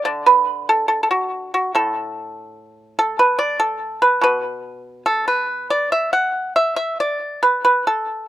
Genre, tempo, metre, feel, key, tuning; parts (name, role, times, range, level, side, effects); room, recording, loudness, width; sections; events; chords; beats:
chinese traditional, Chinese solo plucked strings; 72 BPM; 2/4; rubato; D gong mode; A4 = 440 Hz
pipa; solo; 0.0-8.3 s; A2 to F#5; -16 LUFS; right 1 dB; slapback echo
light reverb; recorded outdoors, with no room sound; -16 LUFS; side -13 dB against mid
0.1-8.3 A section
| 0.07 0.92 | 1.75 2.58 | 3.41 4.23 | 5.06 5.91 | 6.77 7.64